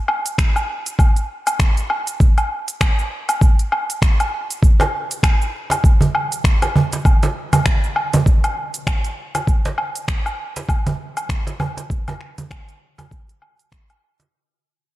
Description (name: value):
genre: downtempo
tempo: 99 BPM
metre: 4/4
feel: swing 58% on 16ths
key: none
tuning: none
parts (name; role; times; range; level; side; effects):
- organic electronic drum kit; drums; 0.1-14.3 s; finger snaps, hi-hat, shaker, woodblock; -22 LUFS; equal; none
- electronic kick drum; drums; 0.4-13.9 s; none; -15 LUFS; equal; overdrive
- cajon; percussion; 4.8-14.3 s; none; -21 LUFS; right 2 dB; none
room: little or no reverb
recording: dark, warm production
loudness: -16 LUFS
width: side -16 dB against mid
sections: 0.0-14.3 A section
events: fade-out 7.9-14.3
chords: none